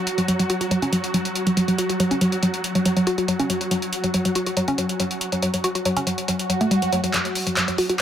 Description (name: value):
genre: driving peak-time techno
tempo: 140 BPM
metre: 4/4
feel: straight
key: unclear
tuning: A4 = 440 Hz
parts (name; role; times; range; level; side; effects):
- swarming drone; drone; 0.0-7.2 s; F#3 to F#4; -27 LUFS; equal; built-in reverb
- punchy analog drum machine; drums; 0.1-8.0 s; handclaps, hi-hat; -26 LUFS; equal; none
- woody wave-folded pluck; riff; 0.2-8.0 s; F#3 to F#4; -22 LUFS; equal; chorus, cassette tape, tape echo
- swell and riser; sound effects; 6.4-8.0 s; none; -29 LUFS; right 5 dB; none
room: light reverb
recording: none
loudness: -20 LUFS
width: side -10 dB against mid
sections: 0.0-7.1 A section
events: filter sweep on synth arpeggio sound 0.0-7.1; swell 6.4-7.1; drum fill 7.1-8.0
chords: 0.0 F#5